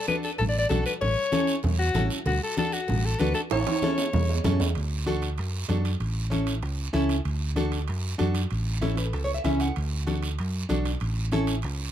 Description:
latin, cumbia; 192 BPM; 4/4; straight; D major; A4 = 440 Hz
bright alto saxophone; melody; 0.0-4.4 s; F#4 to D5; -28 LUFS; left 4 dB; tape echo
nylon-string guitar; accompaniment; 0.1-11.5 s; C#4 to F#5; -29 LUFS; equal
congas; percussion; 0.1-11.8 s; -32 LUFS; left 3 dB
cowbell and timbales; percussion; 0.1-11.8 s; -36 LUFS; right 8 dB
guiro; percussion; 0.1-11.9 s; -38 LUFS; right 6 dB
hollow-body short-scale fingered electric bass; bass; 0.4-11.9 s; A1 to F#2; -27 LUFS; right 1 dB
little or no reverb; close, detailed microphones; -24 LUFS; side -10 dB against mid
0.0-4.8 A section; 4.8-11.9 B section
drum fill 3.5-4.8; nylon-string guitar fill 8.8-9.8
0.0 D; 1.0 A; 2.3 D; 3.5 A; 4.8 D; 6.0 A; 7.3 D; 8.5 A; 9.8 D; 11.0 A

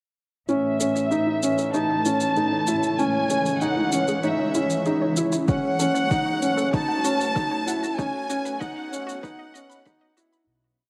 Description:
piano and strings electronica; 96 BPM; 4/4; straight; A4 = 440 Hz
warm chamber violin section; melody; 0.5-10.1 s; E5 to A5; -30 LUFS; equal; low-pass filter
granular cloud pad; sustained chords; 1.5-10.5 s; E3 to D#5; -33 LUFS; equal; built-in reverb
analog pluck; arpeggios; 0.5-10.4 s; D#4 to B5; -36 LUFS; equal
felt-muted upright piano; riff; 0.5-10.4 s; C#4 to E4; -27 LUFS; equal
rich chamber double bass section; bass; 0.5-10.5 s; F#1 to C#2; -36 LUFS; equal; sidechain pumping, high-pass filter
shaker; drums; 0.5-10.5 s; -35 LUFS; equal
electronic kick drum; drums; 5.5-10.0 s; -28 LUFS; equal
moderate huge ambient reverb, RT60 4.6 s; dark, warm production, high-pass filter; -23 LUFS; mono
0.5-10.5 build
build-up 0.5-10.5; filter sweep on ambient pad 0.5-10.5; fade-out 7.2-10.5
0.5 A; 3.0 C#m; 5.5 F#m; 8.0 B

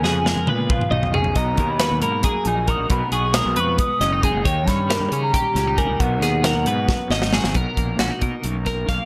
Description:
math rock and midwest emo; 272 BPM (eighths); 7/8; straight; B lydian; A4 = 439 Hz
hollow bansuri; melody; 0.0-7.3 s; E#5 to D#6; -27 LUFS; equal; analog delay
twelve-string electric guitar; accompaniment; 0.0-9.1 s; F#2 to A#4; -29 LUFS; equal; tremolo
twelve-string electric guitar; arpeggios; 0.0-9.1 s; F#4 to E#5; -28 LUFS; equal
fuzz fingered electric bass; bass; 0.0-9.0 s; F#1 to C#3; -26 LUFS; equal; overdrive
modern studio drum kit; drums; 0.0-9.0 s; hi-hat, kick drum, snare drum, toms; -25 LUFS; equal
light reverb; -20 LUFS; mono
0.0-7.6 A section; 7.6-9.1 B section
drum fill 0.0-1.4, 6.9-7.6
0.0 C#7; 1.4 Bmaj7; 2.9 G#m7/B; 4.5 D#7; 6.0 B6; 7.6 Bmaj7

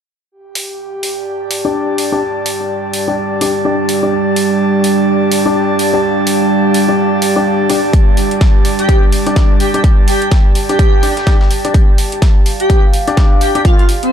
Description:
bass house; 126 BPM; 4/4; swing 59% on 16ths; A4 = 440 Hz
deep dark ambient pad; sustained chords; 2.5-14.1 s; G3 to G5; -18 LUFS; right 2 dB; chorus, built-in reverb, sidechain pumping
airy breathy pad; texture; 0.6-14.1 s; G4 to A5; -18 LUFS; right 1 dB; chorus, sidechain pumping
electronic hi-hat; drums; 0.6-14.1 s; -22 LUFS; right 1 dB; overdrive
bright grand piano; stabs; 1.6-13.6 s; D4 to D5; -19 LUFS; left 4 dB; sidechain pumping, low-pass filter, ping-pong delay
breakbeat sampler-style drum kit; drums; 7.9-14.0 s; hi-hat, snare drum; -29 LUFS; equal; high-pass filter on hats, high-pass filter on snare
electronic kick drum; drums; 7.9-13.8 s; -10 LUFS; equal; overdrive
airy dreamy lead; melody; 8.8-14.1 s; C4 to G4; -18 LUFS; right 1 dB; chorus, ping-pong delay
light reverb, digital ambience; dark, warm production; -10 LUFS; side -8 dB against mid
0.3-14.1 A section
filter sweep on ambient pad 0.3-14.1
0.3 G5

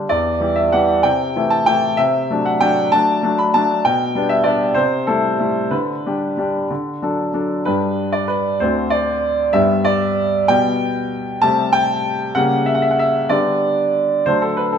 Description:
classical-period piano sonatina; 64 BPM (dotted quarters); 6/8; straight; G major; A4 = 440 Hz
clear concert grand piano; solo; 0.0-14.8 s; D2 to B5; -15 LUFS; equal
wet recital hall reverb, RT60 1.2 s; minimal, uncompressed stereo recording; -15 LUFS; side -7 dB against mid
0.0-7.7 A section; 7.7-14.8 B section
0.1 Em; 1.0 Am7/C; 2.0 D7/C; 3.8 G/B; 4.8 Am7/C; 5.7 G/D; 6.7 D; 7.7 G; 8.6 D7; 9.5 G; 10.5 G/B; 11.4 Am7/C; 12.4 C#dim7; 13.3 G/D; 14.3 D

